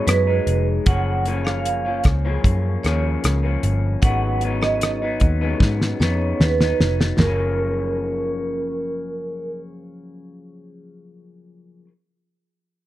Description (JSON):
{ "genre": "indie pop, bedroom pop", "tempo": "76 BPM", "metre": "4/4", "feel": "straight", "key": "F# major", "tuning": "A4 = 440 Hz", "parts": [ { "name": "vibraphone with hard mallets", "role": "second line", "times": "0.0-9.5 s", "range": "A#4 to F#5", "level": "-24 LUFS", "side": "right 4 dB", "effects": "ensemble chorus, slapback echo" }, { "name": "electric guitar through a small old amp", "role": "accompaniment", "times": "0.0-11.9 s", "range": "F#2 to D#4", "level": "-26 LUFS", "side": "left 3 dB", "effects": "wide subtle chorus, warbly pitch drift, plate reverb" }, { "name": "vintage muted picked electric bass", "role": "bass", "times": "0.1-11.8 s", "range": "E#1 to G#2", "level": "-22 LUFS", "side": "equal", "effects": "none" }, { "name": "damped 70s drum kit", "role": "drums", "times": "0.1-7.4 s", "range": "hi-hat, kick drum, rim click, snare drum, toms", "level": "-18 LUFS", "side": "equal", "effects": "none" } ], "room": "light reverb", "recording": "dark, warm production", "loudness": "-18 LUFS", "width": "side -15 dB against mid", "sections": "0.0-7.2 A section; 7.2-10.4 B section", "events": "drum fill 5.6-7.2", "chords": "0.0 B6; 0.9 F#maj7; 4.0 G#m7; 7.2 F#maj7" }